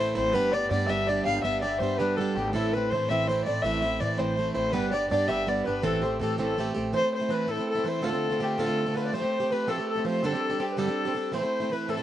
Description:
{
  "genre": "celtic folk, Celtic jig",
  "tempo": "109 BPM (dotted quarters)",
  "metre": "6/8",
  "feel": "straight",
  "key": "A minor",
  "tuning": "A4 = 440 Hz",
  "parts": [
    { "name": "dark fiddle", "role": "melody", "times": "0.0-12.0 s", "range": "G4 to F5", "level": "-29 LUFS", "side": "left 2 dB", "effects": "slapback echo" },
    { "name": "baroque flute", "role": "second line", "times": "0.0-12.0 s", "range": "F4 to F5", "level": "-34 LUFS", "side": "left 5 dB", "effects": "slapback echo" },
    { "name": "open-back banjo", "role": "second line", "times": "0.0-12.0 s", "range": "G4 to F5", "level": "-35 LUFS", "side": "right 2 dB", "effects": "none" },
    { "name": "picked plugged-in swing-style acoustic guitar", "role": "accompaniment", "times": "0.0-12.0 s", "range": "D2 to G4", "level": "-29 LUFS", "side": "right 3 dB", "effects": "slapback echo" },
    { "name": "upright bass", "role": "bass", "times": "0.0-6.9 s", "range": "G1 to A2", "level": "-34 LUFS", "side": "left 1 dB", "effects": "none" }
  ],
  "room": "little or no reverb",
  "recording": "recorded outdoors, with no room sound, nothing above 10.8 kHz",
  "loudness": "-24 LUFS",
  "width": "side -12 dB against mid",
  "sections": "0.0-6.9 A section; 6.9-12.0 B section",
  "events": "none",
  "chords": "0.3 G; 2.5 Am; 4.7 G; 5.8 Am7; 6.9 Am; 8.0 Dm7; 9.1 Fadd9; 10.2 Gsus4; 11.3 Am"
}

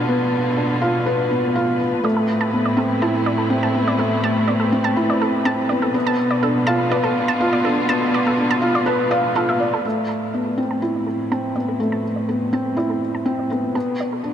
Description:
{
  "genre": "piano and strings electronica",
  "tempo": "123 BPM",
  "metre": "4/4",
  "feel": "straight",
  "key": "A minor",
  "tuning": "A4 = 440 Hz",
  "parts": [
    { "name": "muted studio string section", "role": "sustained chords", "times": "0.0-14.3 s", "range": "C3 to B4", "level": "-26 LUFS", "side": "equal", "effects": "shimmer reverb" },
    { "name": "felt-muted upright piano", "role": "riff", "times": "0.0-14.3 s", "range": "A3 to F5", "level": "-19 LUFS", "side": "equal", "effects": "low-pass filter, tape echo, shimmer reverb" },
    { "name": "warm studio cello section", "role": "bass", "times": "0.0-14.3 s", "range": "A2 to B2", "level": "-27 LUFS", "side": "right 1 dB", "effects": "none" },
    { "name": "analog pluck", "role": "arpeggios", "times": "2.0-14.2 s", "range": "A4 to A5", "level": "-26 LUFS", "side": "right 3 dB", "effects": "chorus, tape echo, shimmer reverb" }
  ],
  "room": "moderate huge ambient reverb, RT60 4.0 s",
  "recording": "dark, warm production",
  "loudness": "-17 LUFS",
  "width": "side -9 dB against mid",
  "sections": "0.0-9.9 A section; 9.9-14.3 B section",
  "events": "fade-in on string section 9.9-14.3",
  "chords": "0.0 Bdim; 2.0 Amadd9; 6.0 Bdim; 9.9 Amadd9; 13.8 Bdim"
}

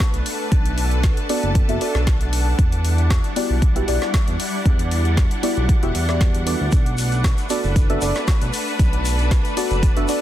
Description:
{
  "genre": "deep house",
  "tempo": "116 BPM",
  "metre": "4/4",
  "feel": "swing 53% on 16ths",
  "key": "B minor",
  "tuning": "A4 = 440 Hz",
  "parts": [
    { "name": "soft string machine", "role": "sustained chords", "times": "0.0-10.2 s", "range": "G3 to F#5", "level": "-29 LUFS", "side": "equal", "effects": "ensemble chorus, vintage 12-bit sampler grit, sidechain pumping" },
    { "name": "deep house drum kit", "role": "drums", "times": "0.0-10.2 s", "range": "hi-hat, snare drum", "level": "-29 LUFS", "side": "left 2 dB", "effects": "none" },
    { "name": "electronic kick drum", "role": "drums", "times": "0.0-9.9 s", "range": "none", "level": "-18 LUFS", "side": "equal", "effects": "none" },
    { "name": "rich symphonic string section", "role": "texture", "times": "0.0-10.2 s", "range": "G3 to A5", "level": "-29 LUFS", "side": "left 1 dB", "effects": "sidechain pumping" },
    { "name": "smooth synth bass", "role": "bass", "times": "0.1-10.1 s", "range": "E1 to E2", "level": "-21 LUFS", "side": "equal", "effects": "sidechain pumping" },
    { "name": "deep mellow chord stab", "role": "stabs", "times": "1.3-10.2 s", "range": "B3 to E5", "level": "-25 LUFS", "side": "equal", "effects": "chorus, sidechain pumping, dub echo" },
    { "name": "tube shaker", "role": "percussion", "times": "6.7-10.2 s", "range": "none", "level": "-34 LUFS", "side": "left 2 dB", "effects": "none" }
  ],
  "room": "digital ambience",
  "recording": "dense, heavily limited modern master",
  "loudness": "-17 LUFS",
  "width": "side -12 dB against mid",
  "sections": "0.0-10.2 A section",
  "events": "none",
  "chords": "0.0 Bm7; 2.6 Em9; 6.7 Bm7"
}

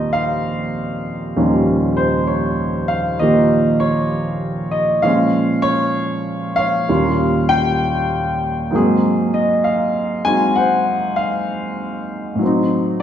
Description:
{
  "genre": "solo jazz",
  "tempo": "65 BPM",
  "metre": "4/4",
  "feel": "swing 66% on 8ths",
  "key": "Eb mixolydian",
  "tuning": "A4 = 435 Hz",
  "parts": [
    { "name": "warm baby grand piano", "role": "solo", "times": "0.0-13.0 s", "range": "Eb2 to Ab5", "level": "-15 LUFS", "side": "equal", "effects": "none" }
  ],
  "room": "wet recital hall reverb, RT60 1.5 s",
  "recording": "recorded in a church or concert hall",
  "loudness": "-15 LUFS",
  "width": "side -9 dB against mid",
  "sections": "0.0-13.0 A section",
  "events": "none",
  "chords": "0.0 Eb13; 5.0 Bbm7; 6.9 Eb9; 8.7 Ab13; 12.4 Adim7"
}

